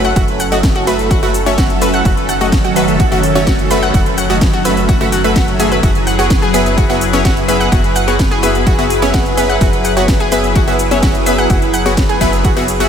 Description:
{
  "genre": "progressive house",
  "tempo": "127 BPM",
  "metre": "4/4",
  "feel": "straight",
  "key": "unclear",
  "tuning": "A4 = 440 Hz",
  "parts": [
    { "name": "lush unison pad", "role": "sustained chords", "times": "0.0-12.9 s", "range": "D#3 to B4", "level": "-17 LUFS", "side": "equal", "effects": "chorus, phaser, sidechain pumping" },
    { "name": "analog pluck", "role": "arpeggios", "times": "0.0-12.9 s", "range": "C#4 to F#5", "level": "-18 LUFS", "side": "right 1 dB", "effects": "chorus, sidechain pumping, diffuse ambient delay" },
    { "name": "supersaw stab", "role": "stabs", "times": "0.0-12.9 s", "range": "A3 to E5", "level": "-18 LUFS", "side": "left 1 dB", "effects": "sidechain pumping, diffuse ambient delay" },
    { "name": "tight sequencer bass", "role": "bass", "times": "0.0-12.9 s", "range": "F#1", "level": "-20 LUFS", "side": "equal", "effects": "sidechain pumping" },
    { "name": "house drum kit", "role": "drums", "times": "0.0-12.9 s", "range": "hi-hat, ride cymbal, shaker, snare drum", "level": "-22 LUFS", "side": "equal", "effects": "overdrive, sidechain pumping on hats, sidechain pumping on perc, sidechain pumping on cymbals" },
    { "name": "electronic kick drum", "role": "drums", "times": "0.2-12.5 s", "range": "none", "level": "-16 LUFS", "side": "equal", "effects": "overdrive" }
  ],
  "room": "moderate lush hall reverb, RT60 2.3 s",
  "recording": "dreamy mix soaked in reverb",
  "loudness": "-10 LUFS",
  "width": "side -8 dB against mid",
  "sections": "0.0-12.9 A section",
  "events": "none",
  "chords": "0.0 F#m7; 5.8 E/F#"
}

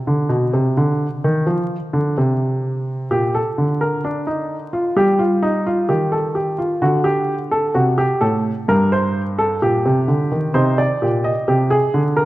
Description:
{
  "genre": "classical, baroque-style 3-part fugue for grand piano",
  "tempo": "64 BPM",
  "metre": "4/4",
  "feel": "straight",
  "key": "unclear",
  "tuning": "A4 = 440 Hz",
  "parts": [
    { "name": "warm baby grand piano", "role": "solo", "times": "0.1-12.3 s", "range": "G2 to Eb5", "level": "-16 LUFS", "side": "equal", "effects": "none" }
  ],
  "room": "moderate concert hall reverb, RT60 2.0 s",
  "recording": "dark, warm production, vinyl crackle",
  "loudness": "-16 LUFS",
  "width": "side -16 dB against mid",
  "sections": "0.0-12.3 A section",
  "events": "none",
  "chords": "0.0 N.C.; 3.1 Gm/Bb (rootless); 5.0 Ebadd9; 6.8 D7; 8.7 Gm; 10.5 Cm"
}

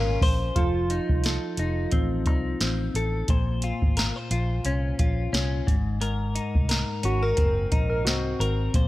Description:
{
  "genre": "indie pop, bedroom pop",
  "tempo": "88 BPM",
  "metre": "4/4",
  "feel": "swing 55% on 16ths",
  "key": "unclear",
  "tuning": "A4 = 440 Hz",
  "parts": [
    { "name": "soft electric-piano-like synth keys", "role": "melody", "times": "0.0-2.9, 7.0-8.5 s", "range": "F4 to Bb4", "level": "-30 LUFS", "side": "right 1 dB", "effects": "wide subtle chorus, analog delay" },
    { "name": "direct-recorded clean electric guitar", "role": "accompaniment", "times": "0.0-8.9 s", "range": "Ab2 to C5", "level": "-29 LUFS", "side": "left 3 dB", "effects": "lush chorus, vibrato effect" },
    { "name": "reed electric piano", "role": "accompaniment", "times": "0.0-0.6 s", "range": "Db4 to Ab4", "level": "-51 LUFS", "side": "right 4 dB", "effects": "none" },
    { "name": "phased analog pad", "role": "sustained chords", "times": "0.0-0.5 s", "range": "Ab3 to Db4", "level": "-47 LUFS", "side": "right 1 dB", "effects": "none" },
    { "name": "vintage muted fingered electric bass", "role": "bass", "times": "0.0-8.9 s", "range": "F1 to C2", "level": "-27 LUFS", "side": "equal", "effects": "none" },
    { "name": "soft vintage rhythm box", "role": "drums", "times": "0.2-8.9 s", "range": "hi-hat, kick drum, snare drum", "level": "-25 LUFS", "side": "equal", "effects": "none" }
  ],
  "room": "digital ambience",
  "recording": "none",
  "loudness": "-22 LUFS",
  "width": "side -16 dB against mid",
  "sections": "0.6-8.9 A section",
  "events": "none",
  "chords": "0.0 Bbm9; 0.6 F7; 3.3 Bbmadd9; 5.7 Ab9"
}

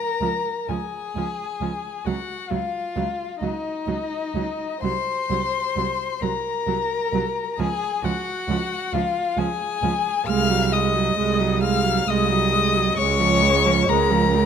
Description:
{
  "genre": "classical, slow romantic movement for string quartet",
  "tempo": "66 BPM",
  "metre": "3/4",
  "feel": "rubato",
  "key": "Db major",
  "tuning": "A4 = 442 Hz",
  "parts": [
    { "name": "warm violin", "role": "melody", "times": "0.0-14.5 s", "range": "Eb5 to F6", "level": "-24 LUFS", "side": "left 8 dB", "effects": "none" },
    { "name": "rich violin", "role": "second line", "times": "0.0-14.5 s", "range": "Eb4 to F5", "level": "-28 LUFS", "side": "left 1 dB", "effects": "none" },
    { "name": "clear viola", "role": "accompaniment", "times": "0.2-14.5 s", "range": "F3 to Ab3", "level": "-27 LUFS", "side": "right 5 dB", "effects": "none" },
    { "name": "rich cello", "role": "bass", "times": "0.2-14.5 s", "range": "C2 to Db2", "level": "-25 LUFS", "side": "right 5 dB", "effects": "none" }
  ],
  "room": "moderate recital hall reverb, RT60 1.6 s",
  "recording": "close, detailed microphones",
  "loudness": "-20 LUFS",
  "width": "side -7 dB against mid",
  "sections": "0.0-14.5 A section",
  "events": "none",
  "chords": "0.0 Db; 2.1 Ebm7/Db; 4.8 Bbsus2/C; 7.6 Db; 10.3 Ab7/C; 13.0 Db"
}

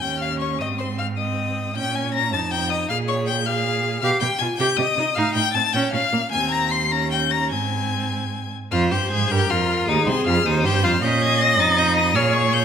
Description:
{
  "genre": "quick classical-period movement for string quartet",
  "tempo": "105 BPM (dotted quarters)",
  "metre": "6/8",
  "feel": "rubato",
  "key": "Ab major",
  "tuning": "A4 = 439 Hz",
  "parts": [
    { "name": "clear violin", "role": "melody", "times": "0.0-12.6 s", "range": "C6 to C7", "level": "-24 LUFS", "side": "left 10 dB", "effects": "none" },
    { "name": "clear violin", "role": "second line", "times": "0.0-12.6 s", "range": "C4 to C6", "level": "-25 LUFS", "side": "left 3 dB", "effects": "none" },
    { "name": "clear viola", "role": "accompaniment", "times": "0.0-12.6 s", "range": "Bb3 to Eb5", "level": "-25 LUFS", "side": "right 2 dB", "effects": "none" },
    { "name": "rich cello", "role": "bass", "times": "0.0-12.6 s", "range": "C2 to C3", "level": "-24 LUFS", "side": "right 4 dB", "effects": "none" }
  ],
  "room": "moderate recital hall reverb, RT60 1.5 s",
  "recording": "none",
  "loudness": "-18 LUFS",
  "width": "side -8 dB against mid",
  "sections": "0.0-8.7 A section; 8.7-12.6 B section",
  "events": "none",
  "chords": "0.0 Eb9; 0.6 Ab; 1.8 Bbm; 2.3 F9; 2.9 Bb5; 4.0 G7; 4.6 Cm; 5.2 F9; 5.7 Bbm; 6.3 Abadd9/Eb; 6.9 Eb7; 7.5 Ab; 9.3 Fsus24; 9.9 Ab; 11.0 Bbm; 11.6 F9"
}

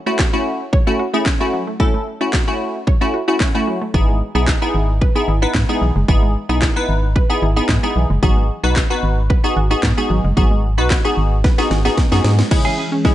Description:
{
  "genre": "dance-pop",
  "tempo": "112 BPM",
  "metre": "4/4",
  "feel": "straight",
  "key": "E major",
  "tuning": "A4 = 440 Hz",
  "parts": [
    { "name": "wavetable chord stab", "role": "accompaniment", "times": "0.1-13.1 s", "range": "G#3 to B4", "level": "-19 LUFS", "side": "left 1 dB", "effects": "sidechain pumping" },
    { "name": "wide unison pluck", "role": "arpeggios", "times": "0.1-13.1 s", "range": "C#3 to C#5", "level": "-26 LUFS", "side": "right 2 dB", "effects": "sidechain pumping, tape echo" },
    { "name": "house drum kit", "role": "drums", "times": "0.2-13.1 s", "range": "crash cymbal, handclaps, kick drum, snare drum", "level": "-16 LUFS", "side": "equal", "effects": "none" },
    { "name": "organ-like FM bass", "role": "bass", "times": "3.9-12.4 s", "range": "F#1 to G#2", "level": "-17 LUFS", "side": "equal", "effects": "sidechain pumping" },
    { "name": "sweeping resonant pad", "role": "sustained chords", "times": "12.5-13.1 s", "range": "E3 to G#4", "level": "-22 LUFS", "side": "left 2 dB", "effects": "chorus, sidechain pumping" },
    { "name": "clean electric guitar", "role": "riff", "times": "12.5-13.1 s", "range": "C#4 to G#4", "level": "-22 LUFS", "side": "right 4 dB", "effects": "analog chorus" },
    { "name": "riser", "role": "sound effects", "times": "12.5-13.1 s", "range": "none", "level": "barely audible", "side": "none", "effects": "none" }
  ],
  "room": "digital ambience",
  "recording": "nothing above 10.7 kHz",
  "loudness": "-14 LUFS",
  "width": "side -13 dB against mid",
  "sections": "0.0-12.5 A section",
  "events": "drum fill 11.4-12.5, 12.5-13.1",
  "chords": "0.0 F#m7; 3.9 Emaj7; 8.2 G#m7; 12.5 C#m"
}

